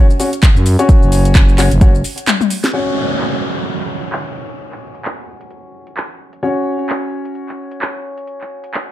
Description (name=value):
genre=bass house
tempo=130 BPM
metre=4/4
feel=swing 58% on 16ths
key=unclear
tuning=A4 = 441 Hz
part: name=warm grand piano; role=stabs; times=0.0-8.9 s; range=C#4 to C#5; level=-21 LUFS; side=left 2 dB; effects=sidechain pumping, tape echo
part: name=house drum kit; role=drums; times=0.1-8.8 s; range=handclaps, hi-hat, shaker, snare drum, toms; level=-19 LUFS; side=left 2 dB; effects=low-pass filter on hats, studio reverb, low-pass filter on perc, low-pass filter on snare, low-pass filter on toms
part: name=electronic kick drum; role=drums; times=0.4-1.9 s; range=none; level=-9 LUFS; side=equal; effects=studio reverb
part: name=growling FM bass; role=bass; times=0.6-2.0 s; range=F#1 to F#2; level=-13 LUFS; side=equal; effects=sidechain pumping
part: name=downlifter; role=sound effects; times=2.7-6.4 s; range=none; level=-23 LUFS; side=right 3 dB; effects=none
room=digital ambience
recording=dark, warm production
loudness=-12 LUFS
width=side -13 dB against mid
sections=0.0-2.7 A section; 2.7-8.9 B section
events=break 2.3-2.7; drum fill 2.3-2.7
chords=0.0 F#5